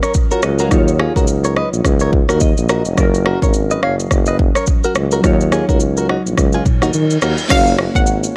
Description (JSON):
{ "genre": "afrobeats", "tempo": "106 BPM", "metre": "4/4", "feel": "swing 58% on 16ths", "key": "F# major", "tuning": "A4 = 440 Hz", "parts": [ { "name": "glassy digital keys", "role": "accompaniment", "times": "0.0-8.4 s", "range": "F#3 to E#5", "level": "-24 LUFS", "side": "equal", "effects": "chorus" }, { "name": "direct-recorded clean electric guitar", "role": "riff", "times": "0.0-7.4 s", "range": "D#4 to E#5", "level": "-23 LUFS", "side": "equal", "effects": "tremolo, analog delay" }, { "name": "afro-pop drum kit", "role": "drums", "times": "0.0-8.3 s", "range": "crash cymbal, kick drum, rim click, shaker, toms", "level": "-19 LUFS", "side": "equal", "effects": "none" }, { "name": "warm tuba", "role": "bass", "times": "0.4-8.3 s", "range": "E#1 to D#3", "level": "-19 LUFS", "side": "equal", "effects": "none" }, { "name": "reverse cymbal", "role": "sound effects", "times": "6.8-7.5 s", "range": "none", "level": "-28 LUFS", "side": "equal", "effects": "none" }, { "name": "analog pluck", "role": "melody", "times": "7.5-8.2 s", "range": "E#5 to F#5", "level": "-19 LUFS", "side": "equal", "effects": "chorus" } ], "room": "little or no reverb", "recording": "dry, gritty hardware recording", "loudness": "-15 LUFS", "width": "mono", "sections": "0.0-7.5 A section", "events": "synth keys fill 2.1-3.0; reverse cymbal 6.8-7.5", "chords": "0.0 F#maj7; 0.7 D#m9; 3.0 F#maj7; 5.2 D#m9; 7.5 F#maj7" }